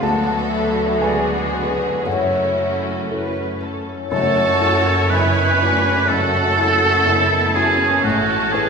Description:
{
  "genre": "cinematic, emotional film score for orchestra",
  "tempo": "57-62 BPM",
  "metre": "4/4",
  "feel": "rubato",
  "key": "F# minor",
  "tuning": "A4 = 439 Hz",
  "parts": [
    { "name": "rich symphonic violin section", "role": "melody", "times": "0.0-8.7 s", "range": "E4 to A5", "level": "-27 LUFS", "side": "left 3 dB", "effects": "none" },
    { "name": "dark clarinet", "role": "second line", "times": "0.0-3.6 s", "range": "A4 to F#5", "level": "-28 LUFS", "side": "left 1 dB", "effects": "none" },
    { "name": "warm symphonic violin section", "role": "second line", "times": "0.0-8.7 s", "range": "F#4 to B4", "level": "-25 LUFS", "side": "left 1 dB", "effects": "none" },
    { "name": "felt-muted upright piano", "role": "accompaniment", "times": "0.0-8.7 s", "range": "F#1 to A5", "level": "-24 LUFS", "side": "left 2 dB", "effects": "none" },
    { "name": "rich symphonic viola section", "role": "accompaniment", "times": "0.0-8.7 s", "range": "F#3 to C#5", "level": "-25 LUFS", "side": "right 1 dB", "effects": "none" },
    { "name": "mellow French horn section", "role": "sustained chords", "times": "0.0-3.6 s", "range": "F#3 to A3", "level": "-27 LUFS", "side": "left 2 dB", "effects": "none" },
    { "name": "concert harp", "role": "arpeggios", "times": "0.0-8.7 s", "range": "F#2 to C#5", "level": "-26 LUFS", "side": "left 2 dB", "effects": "none" },
    { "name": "rich symphonic cello section", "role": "bass", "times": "0.0-8.7 s", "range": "F#2 to F#4", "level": "-27 LUFS", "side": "right 3 dB", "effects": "none" },
    { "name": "rich symphonic double bass section", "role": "bass", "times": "0.0-8.7 s", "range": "F#1 to F#2", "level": "-26 LUFS", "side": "right 2 dB", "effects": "none" },
    { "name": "clear oboe", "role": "second line", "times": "4.1-8.7 s", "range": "F#4 to B4", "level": "-18 LUFS", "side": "right 3 dB", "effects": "none" },
    { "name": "timpani", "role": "percussion", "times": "4.1-5.6 s", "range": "F#2", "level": "-32 LUFS", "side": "equal", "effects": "none" }
  ],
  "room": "wet recital hall reverb, RT60 1.4 s",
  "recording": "recorded in a church or concert hall",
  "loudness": "-15 LUFS",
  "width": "side -5 dB against mid",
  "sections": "0.0-4.1 A section; 4.1-8.7 B section",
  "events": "none",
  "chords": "0.0 Bm7/D; 2.1 F#m7; 8.0 Aadd9"
}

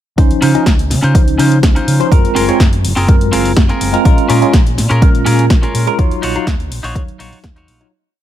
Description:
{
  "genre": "filtered disco house",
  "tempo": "124 BPM",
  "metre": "4/4",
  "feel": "straight",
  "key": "Db major",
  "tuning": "A4 = 440 Hz",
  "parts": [
    { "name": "tine electric piano", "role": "accompaniment", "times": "0.2-7.9 s", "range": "F3 to F5", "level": "-16 LUFS", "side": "right 1 dB", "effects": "medium stereo tremolo, phaser, vintage 12-bit sampler grit, sidechain pumping" },
    { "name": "overdriven fingered electric bass", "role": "bass", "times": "0.2-7.8 s", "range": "Gb1 to Db3", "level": "-16 LUFS", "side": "equal", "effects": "tube saturation, sidechain pumping" },
    { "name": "electronic kick drum", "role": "drums", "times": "0.2-7.5 s", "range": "none", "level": "-11 LUFS", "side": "equal", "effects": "overdrive, studio reverb" },
    { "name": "punchy analog drum machine", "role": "drums", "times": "0.2-7.9 s", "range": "hi-hat, snare drum", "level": "-20 LUFS", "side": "equal", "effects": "overdrive, studio reverb" },
    { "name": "clean electric guitar", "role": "riff", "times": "0.4-7.9 s", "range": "C4 to Db5", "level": "-19 LUFS", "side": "equal", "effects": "sidechain pumping" }
  ],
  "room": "little or no reverb",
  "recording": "none",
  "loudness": "-9 LUFS",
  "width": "side -11 dB against mid",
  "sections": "0.2-7.9 drop",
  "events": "drop 0.2-7.9; fade-out 5.3-7.9",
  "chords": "0.2 Dbmaj9; 2.1 Gbmaj9#11; 4.1 Bbm7; 6.0 Ebm9"
}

